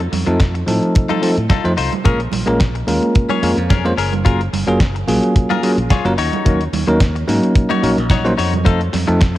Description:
nu-disco, nu disco; 109 BPM; 4/4; swing 53% on 16ths; Bb minor; A4 = 444 Hz
modern bright fingered electric bass; bass; 0.0-9.4 s; Gb1 to A2; -20 LUFS; equal
dusty soul sampler-style drum kit; drums; 0.0-9.3 s; hi-hat, snare drum; -26 LUFS; equal; small room ambience
direct-recorded clean electric guitar; riff; 0.1-9.4 s; Db4 to Db5; -23 LUFS; left 7 dB; wide subtle chorus, cassette tape, tape echo
congas; percussion; 0.1-9.1 s; -27 LUFS; right 10 dB
bell-like tine electric piano; accompaniment; 0.3-9.2 s; F3 to C5; -18 LUFS; equal; sidechain pumping, cassette tape, tape echo
kick drum; drums; 0.4-9.3 s; -13 LUFS; equal; small room ambience
light reverb, small room ambience; home recording on cassette; -13 LUFS; side -15 dB against mid
0.0-9.4 A section
0.0 F7; 2.1 Bbm7; 4.3 Gbmaj9; 6.2 Ebm7; 8.7 F7

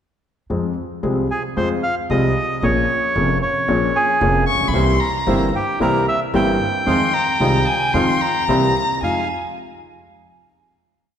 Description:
tango; 113 BPM; 4/4; rubato; F minor; A4 = 440 Hz
clear concert grand piano; accompaniment; 0.5-9.2 s; F1 to Ab4; -20 LUFS; left 2 dB
upright bass; bass; 0.5-9.2 s; F1 to F2; -24 LUFS; right 2 dB
bandoneon; melody; 1.3-9.3 s; G4 to G5; -20 LUFS; right 1 dB
warm violin; second line; 4.5-9.3 s; Ab5 to Db6; -22 LUFS; left 2 dB
bandoneon; stabs; 4.7-9.2 s; Ab3 to F4; -27 LUFS; right 6 dB
wet scoring stage reverb, RT60 1.9 s; recorded in a church or concert hall; -16 LUFS; side -8 dB against mid
0.5-9.0 A section; 9.0-11.1 final chord
0.5 Fm; 2.6 Bbm7; 4.7 C7; 6.9 Fm7; 8.5 C7; 9.0 Fm7

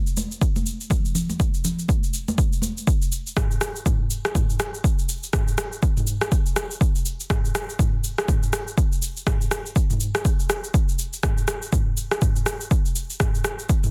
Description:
house; 122 BPM; 4/4; swing 59% on 16ths
afro-pop drum kit; drums; 0.1-13.9 s; rim click, shaker, toms; -29 LUFS; equal
congas; percussion; 0.2-2.7 s; -31 LUFS; equal
electronic kick drum; drums; 0.4-13.8 s; -24 LUFS; equal; overdrive
digital ambience; dense, heavily limited modern master; -23 LUFS; mono
0.0-2.9 A section; 2.9-13.9 B section
drop 2.9-13.9

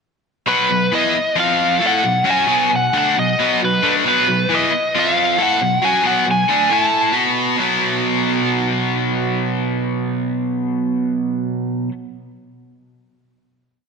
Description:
rock; 136 BPM; 4/4; straight; A4 = 440 Hz
biting lead guitar; melody; 0.5-7.1 s; B4 to A5; -17 LUFS; equal; overdrive
cranked stack guitar; riff; 0.5-11.9 s; B2 to B4; -17 LUFS; equal; overdrive, lush chorus
wet lush hall reverb, RT60 2.3 s; bright 1980s-style digital production; -15 LUFS; side -5 dB against mid
0.5-7.6 riff; 7.6-11.1 final chord
0.5 B; 1.4 F5; 1.8 B; 4.9 F5; 5.4 B5; 6.7 A5; 7.1 B5

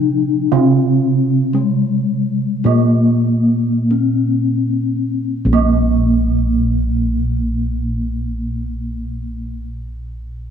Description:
Javanese gamelan; 40-66 BPM; 4/4; straight; Bb slendro; A4 = 441 Hz
gamelan-type bronze metallophone; melody; 0.0-9.6 s; Ab3-45c to Eb4-35c; -19 LUFS; left 8 dB
gamelan-type bronze metallophone; accompaniment; 0.0-9.6 s; C3+30c to Bb3; -19 LUFS; right 10 dB
gamelan-type bossed gongs; bass; 0.0-9.5 s; Bb1 to C4+30c; -19 LUFS; equal
moderate echo chamber reverb, RT60 2.4 s; 1960s-style stereo with parts hard left and right; -14 LUFS; side -8 dB against mid
0.0-5.3 A section; 5.3-10.5 B section
slowing down 0.0-5.3

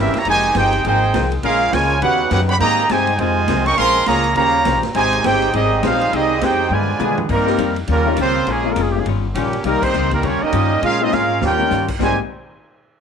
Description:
jazz, big band swing; 204 BPM; 4/4; swing 60% on 8ths; Ab major; A4 = 440 Hz
clear trumpet section; melody; 0.0-12.2 s; G3 to Db6; -17 LUFS; right 1 dB
bright trombone section; second line; 0.0-12.2 s; Ab2 to Ab4; -22 LUFS; right 11 dB
vintage hollow-body jazz guitar; accompaniment; 0.0-12.1 s; Ab2 to C5; -24 LUFS; left 16 dB
dark trombone section; sustained chords; 0.0-7.3 s; Db3 to Ab4; -30 LUFS; left 2 dB
upright bass; bass; 0.0-12.2 s; F1 to B2; -22 LUFS; left 1 dB
swinging big-band drum kit; drums; 0.1-12.1 s; crash cymbal, hi-hat, kick drum, ride cymbal, snare drum, toms; -28 LUFS; right 5 dB
warm baby grand piano; accompaniment; 7.5-12.2 s; G3 to G4; -23 LUFS; left 17 dB
moderate spring reverb, RT60 1.4 s, small room ambience; 1960s-style stereo with parts hard left and right; -14 LUFS; side -7 dB against mid
0.0-7.3 A section; 7.3-12.0 B section; 12.0-13.0 C section
drum fill 6.7-7.3, 11.1-11.7; band accent 9.8
0.3 Fm11; 1.4 Bbm7; 2.0 Eb7alt; 2.6 Abmaj7; 3.2 Fm7; 3.8 Bbm7; 4.4 Eb13; 5.0 Abmaj7; 6.7 G7b9; 7.3 Cm7; 7.9 Eb9; 8.5 Bbm7; 9.1 Eb9; 9.6 Cm7; 10.2 Eb9; 10.8 Bbm7; 11.4 Eb9; 12.0 Abmaj7

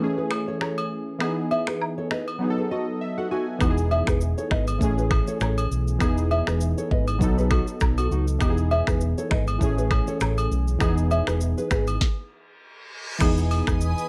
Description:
afrobeats; 100 BPM; 4/4; swing 55% on 16ths; E major; A4 = 440 Hz
warm analog keys; accompaniment; 0.0-14.1 s; E3 to G#5; -30 LUFS; equal; chorus, plate reverb
nylon-string guitar; riff; 0.2-11.8 s; D#4 to E5; -31 LUFS; equal; tape echo
afro-pop drum kit; drums; 0.3-14.1 s; crash cymbal, finger snaps, hi-hat, kick drum, rim click, shaker, snare drum; -27 LUFS; equal
agogo bells and woodblock; percussion; 0.3-13.7 s; -36 LUFS; equal
fingered electric bass; bass; 3.6-13.9 s; E1 to C#2; -27 LUFS; equal
reverse cymbal; sound effects; 12.5-13.2 s; -39 LUFS; equal
granular cloud pad; sustained chords; 13.6-14.1 s; B4 to D#6; -34 LUFS; equal; built-in reverb
light reverb; -24 LUFS; mono
0.0-3.6 A section; 3.6-13.2 B section
synth keys fill 2.4-3.6; stop 12.0-13.2; reverse cymbal 12.5-13.2
0.0 Amaj7; 1.2 Emaj7; 2.4 B7; 3.6 Emaj7; 4.8 Amaj7; 6.0 Emaj7; 7.2 B7; 8.4 Emaj7; 9.6 Amaj7; 10.8 Emaj7; 12.0 N.C.; 13.2 Emaj7

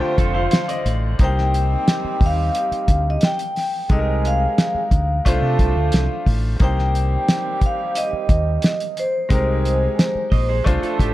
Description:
lush 1970s-style soul; 89 BPM; 4/4; straight; C minor; A4 = 440 Hz
vibraphone with soft mallets; melody; 0.0-11.1 s; C5 to G5; -24 LUFS; left 1 dB; slapback echo
bright concert grand piano; accompaniment; 0.0-11.1 s; D3 to G5; -28 LUFS; left 3 dB
electric guitar through a small old amp; riff; 0.0-1.2, 10.3-11.1 s; F4 to Eb5; -30 LUFS; right 9 dB; vibrato effect
mellow horn section; stabs; 0.0-11.1 s; D3 to A4; -29 LUFS; right 9 dB
fingered electric bass; bass; 0.0-11.1 s; F1 to C3; -20 LUFS; equal
cloth-damped thuddy drum kit; drums; 0.2-11.1 s; hi-hat, kick drum, snare drum; -19 LUFS; equal
small room ambience; dark, warm production; -17 LUFS; side -15 dB against mid
0.0-11.1 A section
grand piano fill 0.0-1.2
0.0 Dm7; 1.2 Cm7; 3.9 Fm11/C; 5.2 Dm7/C; 6.6 Cm7; 9.3 Bb13sus4

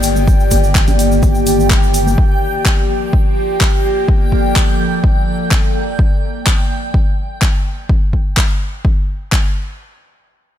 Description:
progressive house; 126 BPM; 4/4; straight; G minor; A4 = 440 Hz
evolving wavetable pad; sustained chords; 0.0-6.0 s; Eb3 to D5; -18 LUFS; equal; phaser, built-in reverb, sidechain pumping
round analog bass; bass; 0.0-2.2 s; G1; -17 LUFS; equal; sidechain pumping
deep house drum kit; drums; 0.0-9.4 s; handclaps, hi-hat; -20 LUFS; left 1 dB; sidechain pumping on hats
tube shaker; percussion; 0.0-2.2 s; -26 LUFS; right 4 dB
backwards swelling texture; texture; 0.0-6.0 s; G5; -24 LUFS; right 1 dB; built-in reverb, sidechain pumping
congas; percussion; 0.2-2.2 s; -25 LUFS; right 2 dB; sidechain pumping on perc
electronic kick drum; drums; 0.3-9.4 s; -14 LUFS; equal
digital ambience; -12 LUFS; side -11 dB against mid
0.0-9.8 A section
0.0 Ebmaj7/G; 2.2 Gm7

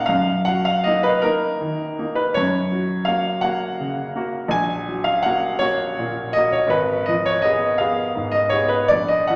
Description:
classical, romantic nocturne for solo piano; 55 BPM (dotted quarters); 6/8; rubato; A4 = 440 Hz
clear concert grand piano; solo; 0.0-9.4 s; Ab1 to Ab5; -20 LUFS; equal
wet recital hall reverb, RT60 1.7 s; -21 LUFS; mono
0.0-9.4 A section
0.1 Ebm/Gb; 2.3 Gb; 4.5 Gb/Bb; 6.7 Fdim/Ab

